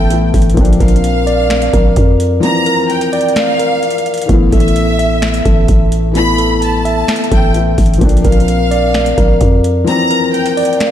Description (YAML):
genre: hip hop, trap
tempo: 129 BPM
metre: 4/4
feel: half-time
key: unclear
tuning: A4 = 442 Hz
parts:
  - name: rich studio violin section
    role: second line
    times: 0.0-10.9 s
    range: E5 to B5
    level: -19 LUFS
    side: equal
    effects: ping-pong delay
  - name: felt-muted upright piano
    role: accompaniment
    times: 0.0-10.9 s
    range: E3 to E4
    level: -19 LUFS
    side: left 6 dB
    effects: none
  - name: mellow tine electric piano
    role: arpeggios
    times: 0.0-10.9 s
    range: B3 to E5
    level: -16 LUFS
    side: equal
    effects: medium stereo tremolo, ping-pong delay
  - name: growling 808-style bass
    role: bass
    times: 0.0-9.9 s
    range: A1 to F2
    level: -14 LUFS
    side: equal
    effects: none
  - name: booming analog drum machine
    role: drums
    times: 0.1-10.9 s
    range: finger snaps, hi-hat, kick drum, snare drum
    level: -14 LUFS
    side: equal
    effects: none
room: moderate lush hall reverb, RT60 2.0 s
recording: dreamy mix soaked in reverb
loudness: -10 LUFS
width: side -10 dB against mid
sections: 0.0-10.9 A section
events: break 2.4-4.3; kick muted 9.9-10.9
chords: 0.0 Asus2; 0.6 Bbadd9; 4.3 Asus2; 8.0 Bbadd9